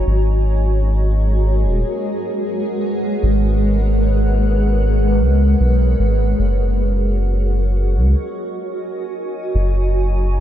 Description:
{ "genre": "ambient dub", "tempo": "76 BPM", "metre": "4/4", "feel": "straight", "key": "G# minor", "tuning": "A4 = 439 Hz", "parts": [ { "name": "granular cloud pad", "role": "sustained chords", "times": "0.0-10.4 s", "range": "G#3 to A#5", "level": "-20 LUFS", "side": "equal", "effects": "built-in reverb, vintage 12-bit sampler grit" }, { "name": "soft dub sub bass", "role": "bass", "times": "0.0-10.4 s", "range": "D#1 to C#2", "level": "-15 LUFS", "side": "equal", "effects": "none" } ], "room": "little or no reverb", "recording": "dark, warm production", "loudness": "-15 LUFS", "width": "side -11 dB against mid", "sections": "0.0-10.4 A section", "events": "none", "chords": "0.1 G#m11; 6.4 F#6" }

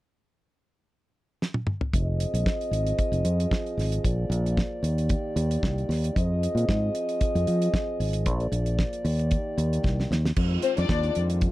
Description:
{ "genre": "disco", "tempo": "114 BPM", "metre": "4/4", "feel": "straight", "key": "F dorian", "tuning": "A4 = 442 Hz", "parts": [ { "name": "damped 70s drum kit", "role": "drums", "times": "1.4-11.5 s", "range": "crash cymbal, hi-hat, kick drum, snare drum, toms", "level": "-28 LUFS", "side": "equal", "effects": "none" }, { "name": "dark French horn section", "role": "sustained chords", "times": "1.9-11.5 s", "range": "Eb3 to Eb5", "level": "-30 LUFS", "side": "equal", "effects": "none" }, { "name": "fingered electric bass", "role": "bass", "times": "1.9-11.5 s", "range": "F1 to F3", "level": "-25 LUFS", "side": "equal", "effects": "none" }, { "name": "dark studio string section", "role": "second line", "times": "10.6-11.1 s", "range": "C4 to D5", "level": "-27 LUFS", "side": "left 7 dB", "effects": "none" } ], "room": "little or no reverb", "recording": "dry, close 1970s-style studio recording", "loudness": "-23 LUFS", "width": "side -17 dB against mid", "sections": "0.0-1.9 A section; 1.9-10.4 B section; 10.4-11.5 C section", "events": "drum fill 1.4-1.9, 9.8-10.4", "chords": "0.0 N.C.; 1.9 Fm7; 4.0 Bb7; 4.8 Ebmaj7; 6.2 Fm7; 8.3 Bb7; 9.1 Ebmaj7; 10.4 Fm7" }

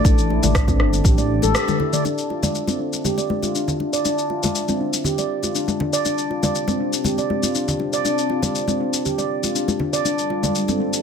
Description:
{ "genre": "afro house", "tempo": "120 BPM", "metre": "4/4", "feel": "straight", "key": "D minor", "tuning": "A4 = 440 Hz", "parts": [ { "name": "dark analog pad", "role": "sustained chords", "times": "0.0-11.0 s", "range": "G3 to E5", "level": "-28 LUFS", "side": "left 2 dB", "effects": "chorus, sidechain pumping" }, { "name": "handpan", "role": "arpeggios", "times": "0.0-10.9 s", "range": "C4 to D5", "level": "-22 LUFS", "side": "right 1 dB", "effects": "sidechain pumping, low-pass filter, ping-pong delay" }, { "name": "dark detuned saw bass", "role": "bass", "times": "0.0-1.6 s", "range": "G1 to A1", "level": "-21 LUFS", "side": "equal", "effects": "sidechain pumping" }, { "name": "electronic kick drum", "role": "drums", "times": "0.0-1.2 s", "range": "none", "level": "-17 LUFS", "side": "equal", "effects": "overdrive" }, { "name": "afro-pop drum kit", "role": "drums", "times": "0.1-11.0 s", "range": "rim click, shaker, toms", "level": "-25 LUFS", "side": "left 4 dB", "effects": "overdrive" }, { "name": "congas", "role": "percussion", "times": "0.1-11.0 s", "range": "none", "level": "-26 LUFS", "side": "left 3 dB", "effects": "none" } ], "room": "light reverb", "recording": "none", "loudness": "-18 LUFS", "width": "side -7 dB against mid", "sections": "0.0-2.1 A section; 2.1-11.0 B section", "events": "break 1.6-2.1; band accent 1.6; filter sweep on handpan 2.1-11.0", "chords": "0.0 A7(no3); 2.1 D5; 6.1 C5; 10.1 G5" }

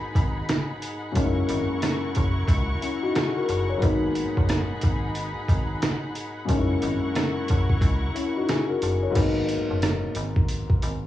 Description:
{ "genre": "hip hop, boom-bap hip-hop", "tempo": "90 BPM", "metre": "4/4", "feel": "swing 62% on 16ths", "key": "G# minor", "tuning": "A4 = 440 Hz", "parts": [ { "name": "dark concert grand piano", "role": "accompaniment", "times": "0.0-11.1 s", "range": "F#2 to C#5", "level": "-27 LUFS", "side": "left 3 dB", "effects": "cassette tape, high-pass filter, low-pass filter" }, { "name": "warm symphonic string section", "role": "sustained chords", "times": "0.0-9.1 s", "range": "D#4 to C#6", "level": "-33 LUFS", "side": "equal", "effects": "high-pass filter, low-pass filter" }, { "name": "metallic FM bass", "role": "bass", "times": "0.2-11.1 s", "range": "F#1 to C#2", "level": "-28 LUFS", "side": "equal", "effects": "tube saturation" }, { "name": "trip hop sampler-style drum kit", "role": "drums", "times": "0.2-11.0 s", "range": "crash cymbal, hi-hat, kick drum, rim click, snare drum", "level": "-25 LUFS", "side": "equal", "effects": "cassette tape" } ], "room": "light reverb", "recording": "home recording on cassette, vinyl crackle, small room ambience", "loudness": "-22 LUFS", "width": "side -13 dB against mid", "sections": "0.0-9.2 A section; 9.2-11.1 B section", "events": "none", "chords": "0.0 G#m7; 1.2 F#7; 3.8 G#m7; 6.5 F#7; 9.2 G#m7" }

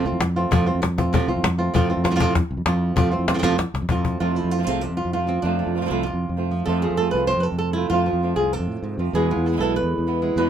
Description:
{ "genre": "flamenco", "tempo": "194 BPM", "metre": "4/4", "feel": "straight", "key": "unclear", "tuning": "A4 = 441 Hz", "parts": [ { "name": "flamenco guitar", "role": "melody", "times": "0.0-10.5 s", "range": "E2 to C5", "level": "-23 LUFS", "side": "right 2 dB", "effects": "none" }, { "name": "sustaining fretless electric bass", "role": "bass", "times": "0.0-10.5 s", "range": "B1 to A2", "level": "-24 LUFS", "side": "equal", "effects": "none" }, { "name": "cajon", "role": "percussion", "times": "0.1-4.1 s", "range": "none", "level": "-22 LUFS", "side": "left 3 dB", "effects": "none" }, { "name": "flamenco guitar", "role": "stabs", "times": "4.2-10.5 s", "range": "B2 to F4", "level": "-26 LUFS", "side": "right 5 dB", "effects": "none" } ], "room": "light reverb", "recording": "minimal, uncompressed stereo recording", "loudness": "-19 LUFS", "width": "side -9 dB against mid", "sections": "0.0-4.2 A section; 4.2-10.5 B section", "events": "drum fill 3.4-4.2", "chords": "0.0 F; 9.1 E" }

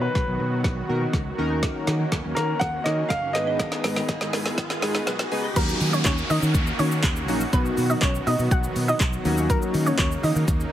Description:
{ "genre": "dance-pop", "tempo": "122 BPM", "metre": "4/4", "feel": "straight", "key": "Eb minor", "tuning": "A4 = 441 Hz", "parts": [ { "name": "clear concert grand piano", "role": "melody", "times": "0.0-5.0 s", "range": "Bb4 to Gb5", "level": "-28 LUFS", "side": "equal", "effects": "ping-pong delay" }, { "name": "chorused polysynth", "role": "accompaniment", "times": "0.0-10.0 s", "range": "D#3 to B4", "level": "-28 LUFS", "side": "left 1 dB", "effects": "sidechain pumping" }, { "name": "supersaw pad", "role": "sustained chords", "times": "0.0-10.7 s", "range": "Db3 to Ab4", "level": "-31 LUFS", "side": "right 1 dB", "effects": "sidechain pumping" }, { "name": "glassy wavetable pluck", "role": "arpeggios", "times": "0.0-5.5 s", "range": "D#3 to Ab5", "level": "-36 LUFS", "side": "right 4 dB", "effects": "none" }, { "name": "fingered electric bass", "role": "bass", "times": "0.0-10.6 s", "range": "Gb1 to Eb3", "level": "-26 LUFS", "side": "equal", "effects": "sidechain pumping" }, { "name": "riser and downlifter", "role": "sound effects", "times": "1.4-9.5 s", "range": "none", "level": "-34 LUFS", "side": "left 1 dB", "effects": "none" }, { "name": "deep house drum kit", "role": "drums", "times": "0.2-10.7 s", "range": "crash cymbal, handclaps, hi-hat, kick drum, shaker, snare drum", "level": "-26 LUFS", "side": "equal", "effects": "none" }, { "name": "analog pluck", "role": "melody", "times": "5.6-10.3 s", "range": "Bb3 to F#5", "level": "-27 LUFS", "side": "equal", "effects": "chorus, sidechain pumping, ping-pong delay" }, { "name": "group handclap", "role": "percussion", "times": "6.1-10.1 s", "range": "none", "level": "-39 LUFS", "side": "right 5 dB", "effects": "none" } ], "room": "light reverb, digital ambience", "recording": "heavily compressed radio sound, high-pass filter", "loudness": "-21 LUFS", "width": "side -12 dB against mid", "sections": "0.0-5.6 A section; 5.6-10.7 B section", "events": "build-up 0.0-5.6; drum fill 0.0-5.6; filter sweep 0.0-5.6; riser 1.4-5.6; drop 5.6-10.7", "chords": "0.0 B; 1.4 Ebm7; 3.3 Abm; 5.6 Ebm7; 7.5 B; 9.3 Ebm7" }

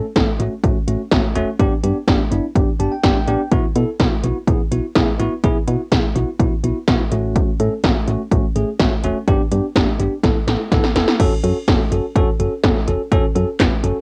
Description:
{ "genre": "synth-pop", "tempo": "125 BPM", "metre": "4/4", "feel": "straight", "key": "unclear", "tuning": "A4 = 437 Hz", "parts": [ { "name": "bell-like tine electric piano", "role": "accompaniment", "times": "0.0-14.0 s", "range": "A3 to A5", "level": "-24 LUFS", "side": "equal", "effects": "none" }, { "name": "solid FM bass", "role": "bass", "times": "0.2-13.9 s", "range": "E1 to B2", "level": "-23 LUFS", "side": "equal", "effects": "none" }, { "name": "80s electronic pad drums", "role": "drums", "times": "0.2-13.9 s", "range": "crash cymbal, handclaps, hi-hat, kick drum, snare drum", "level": "-20 LUFS", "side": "equal", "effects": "cassette tape" } ], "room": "moderate booth ambience, RT60 0.2 s", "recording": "home recording on cassette", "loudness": "-18 LUFS", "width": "mono", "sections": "0.0-11.2 A section; 11.2-14.0 B section", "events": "tine electric piano fill 2.6-3.5; drum fill 10.2-11.2", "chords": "0.0 F#m/A; 1.6 G; 3.5 Bsus4; 7.1 F#m/A; 9.3 G; 10.2 Asus2; 11.2 F#m" }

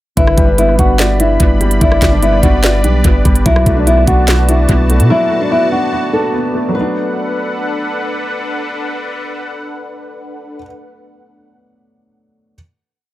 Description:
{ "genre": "hip hop, trap", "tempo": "146 BPM", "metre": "4/4", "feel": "half-time", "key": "B minor", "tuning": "A4 = 442 Hz", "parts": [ { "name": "nylon-string guitar", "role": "melody", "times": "0.2-7.9 s", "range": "D4 to B4", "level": "-16 LUFS", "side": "left 1 dB", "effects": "analog delay" }, { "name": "breathy flute-like synth lead", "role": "second line", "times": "0.2-2.6 s", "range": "B4 to D5", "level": "-22 LUFS", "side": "left 2 dB", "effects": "chorus, analog delay" }, { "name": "dark baby grand piano", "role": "accompaniment", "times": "0.2-12.6 s", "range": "D3 to D5", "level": "-19 LUFS", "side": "right 1 dB", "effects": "none" }, { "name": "sweeping resonant pad", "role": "sustained chords", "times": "0.2-10.6 s", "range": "G3 to B5", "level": "-22 LUFS", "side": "equal", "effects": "chorus" }, { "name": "long sustained 808-style bass", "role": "bass", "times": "0.2-5.1 s", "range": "G1 to B2", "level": "-13 LUFS", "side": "equal", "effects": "none" }, { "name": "trap drum kit", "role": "drums", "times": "0.2-5.1 s", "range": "handclaps, hi-hat, kick drum, rim click, snare drum", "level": "-14 LUFS", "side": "equal", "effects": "analog delay" } ], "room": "light reverb", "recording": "echo-heavy mix", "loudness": "-10 LUFS", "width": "side -15 dB against mid", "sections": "0.2-6.7 hook; 6.7-10.0 final chord", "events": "none", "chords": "0.2 G; 3.5 Bm7" }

